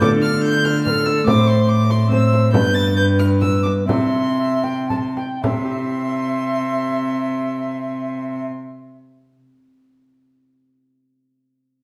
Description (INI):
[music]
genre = classical, renaissance-style consort dance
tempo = 107-144 BPM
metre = 3/4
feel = straight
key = C major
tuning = A4 = 440 Hz
[part]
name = warm violin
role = melody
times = 0.0-8.5 s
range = C6 to A6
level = -27 LUFS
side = equal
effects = none
[part]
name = mellow tenor recorder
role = second line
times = 0.0-8.5 s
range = A4 to A5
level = -26 LUFS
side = equal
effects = none
[part]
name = Celtic harp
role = accompaniment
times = 0.0-9.3 s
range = G2 to E5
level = -26 LUFS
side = equal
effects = none
[part]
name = dark cello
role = bass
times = 0.0-8.5 s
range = G2 to D3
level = -22 LUFS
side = equal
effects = none
[part]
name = frame drum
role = percussion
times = 0.0-5.7 s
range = none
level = -27 LUFS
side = equal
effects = none
[sound]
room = wet stone room reverb, RT60 1.3 s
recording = heard from further back in the room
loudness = -19 LUFS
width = mono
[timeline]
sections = 0.0-5.4 A section; 5.4-8.8 B section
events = slowing down 1.9-5.4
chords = 0.0 Dm; 1.3 Am; 2.5 G; 3.9 C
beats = | 0.02 0.44 0.85 | 1.27 1.70 2.12 | 2.54 2.98 3.42 | 3.89 4.38 4.89 | 5.44 6.00 6.56 | 7.12 7.67 8.23